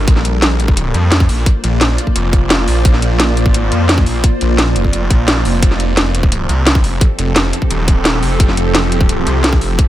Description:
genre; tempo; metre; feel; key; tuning
dark technical drum and bass; 173 BPM; 4/4; straight; unclear; A4 = 440 Hz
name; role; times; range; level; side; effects
swarming drone; sustained chords; 0.0-9.9 s; F3 to D5; -20 LUFS; right 1 dB; built-in reverb, sidechain pumping
snarling distorted saw bass; bass; 0.0-9.8 s; Eb1 to F2; -15 LUFS; equal; distortion, overdrive
drum and bass drum kit; drums; 0.1-9.9 s; hi-hat, snare drum; -16 LUFS; equal; none
electronic kick drum; drums; 0.1-9.9 s; none; -12 LUFS; equal; none
room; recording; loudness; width
little or no reverb; none; -11 LUFS; side -14 dB against mid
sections
0.0-9.9 A section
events
none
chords
0.1 Bb; 5.6 F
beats
| 0.08 0.42 0.77 1.12 | 1.46 1.81 2.16 2.50 | 2.85 3.20 3.54 3.89 | 4.24 4.58 4.93 5.28 | 5.62 5.97 6.32 6.67 | 7.01 7.36 7.71 8.05 | 8.40 8.75 9.09 9.44 | 9.79

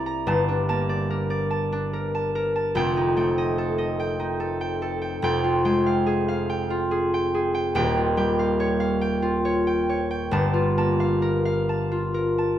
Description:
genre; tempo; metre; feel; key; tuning
classical, solo harp piece; 48 BPM (dotted quarters); 6/8; rubato; unclear; A4 = 441 Hz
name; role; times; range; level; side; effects
concert harp; solo; 0.0-12.6 s; Eb1 to Bb5; -21 LUFS; equal; none
room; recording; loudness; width
light reverb; close, detailed microphones; -21 LUFS; side -11 dB against mid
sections
0.0-12.6 A section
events
none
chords
0.3 Gmadd9; 2.7 F9; 5.2 Fmadd9; 7.8 Eb9; 10.3 Gm9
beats
| 0.27 1.50 | 2.75 3.98 | 5.23 6.48 | 7.75 9.03 | 10.33 11.69

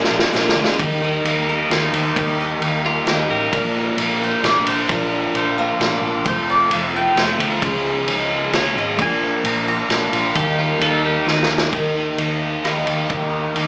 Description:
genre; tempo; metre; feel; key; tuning
folk rock and heartland rock; 132 BPM; 3/4; straight; unclear; A4 = 435 Hz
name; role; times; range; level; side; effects
mandolin; melody; 0.0-13.7 s; F4 to Bb5; -25 LUFS; equal; slapback echo
picked steel-string acoustic guitar; accompaniment; 0.0-13.7 s; F2 to Ab4; -29 LUFS; equal; none
bright tonewheel organ; sustained chords; 0.0-11.7 s; F3 to Ab5; -32 LUFS; equal; none
cranked stack guitar; riff; 0.0-13.7 s; F2 to G4; -25 LUFS; equal; overdrive, phaser, slapback echo
hollow-body short-scale fingered electric bass; bass; 0.0-13.7 s; F1 to Eb2; -30 LUFS; equal; none
vintage drum kit; drums; 0.0-13.7 s; kick drum, ride cymbal, rim click, snare drum; -23 LUFS; equal; none
egg shaker; percussion; 0.1-0.5 s; none; barely audible; none; none
twelve-string electric guitar; second line; 2.9-4.1, 10.4-11.5 s; Eb4 to Bb4; -25 LUFS; equal; none
room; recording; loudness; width
moderate club reverb, RT60 0.6 s; live gig heard through the venue's PA, club reverb, small speaker sound; -19 LUFS; mono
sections
0.8-11.7 A section; 11.7-13.7 B section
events
drum fill 0.0-0.8, 11.3-11.7; mandolin solo 0.8-11.7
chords
0.0 Bb7; 0.8 Eb; 3.5 Bb; 6.3 F; 7.6 Db; 9.0 Bb; 10.3 Eb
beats
0.34 | 0.79 1.24 1.70 | 2.15 2.61 3.06 | 3.52 3.98 4.43 | 4.89 5.34 5.80 | 6.25 6.71 7.16 | 7.62 8.07 8.53 | 8.98 9.44 9.89 | 10.35 10.81 11.26 | 11.72 12.18 12.63 | 13.09 13.55

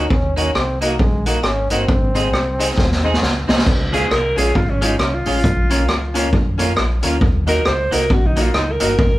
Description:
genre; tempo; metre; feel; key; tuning
ska; 135 BPM; 4/4; swing 60% on 8ths; Db major; A4 = 440 Hz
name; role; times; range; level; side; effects
breathy trombone; melody; 0.0-3.4 s; Ab3 to Eb4; -23 LUFS; equal; none
electric guitar at the edge of break-up; accompaniment; 0.0-8.9 s; Ab3 to Ab4; -24 LUFS; right 3 dB; dub echo
tack piano; stabs; 0.0-8.9 s; Db4 to Eb5; -25 LUFS; left 3 dB; none
fingered electric bass; bass; 0.0-9.2 s; G1 to F2; -21 LUFS; equal; none
street-band drum kit; drums; 0.1-9.1 s; crash cymbal, hi-hat, kick drum, rim click, snare drum; -18 LUFS; equal; dub echo
breathy alto saxophone; melody; 3.9-9.2 s; Db4 to C5; -20 LUFS; equal; none
room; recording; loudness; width
light reverb; band playing live in one room, vinyl crackle; -15 LUFS; side -16 dB against mid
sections
0.0-3.7 A section; 3.7-9.2 B section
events
drum fill 2.8-3.7; alto saxophone solo 3.7-9.2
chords
0.1 Ebm; 1.9 Ab; 3.7 Db; 5.4 Bbm; 7.2 Ebm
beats
| 0.11 0.55 1.00 1.44 | 1.89 2.33 2.77 3.22 | 3.66 4.11 4.55 5.00 | 5.44 5.88 6.33 6.77 | 7.21 7.66 8.10 8.54 | 8.99

